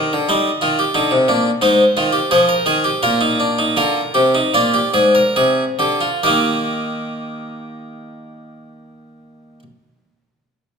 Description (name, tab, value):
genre	classical, baroque-style 3-part fugue for harpsichord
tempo	66-93 BPM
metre	4/4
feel	straight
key	Eb major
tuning	A4 = 439 Hz
part	harpsichord	solo	0.0-9.6 s	Ab2 to Eb5	-14 LUFS	equal	none
room	wet recital hall reverb, RT60 1.5 s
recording	minimal, uncompressed stereo recording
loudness	-14 LUFS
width	side -6 dB against mid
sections	0.0-6.2 A section; 6.2-9.8 B section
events	slowing down 0.0-6.2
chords	0.3 Eb; 1.6 Fm7/Ab; 3.0 Eb/Bb; 4.5 Bb7; 6.2 Eb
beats	| 0.29 0.94 1.61 2.30 | 3.01 3.76 4.53 5.35 | 6.22 7.12 8.02 8.93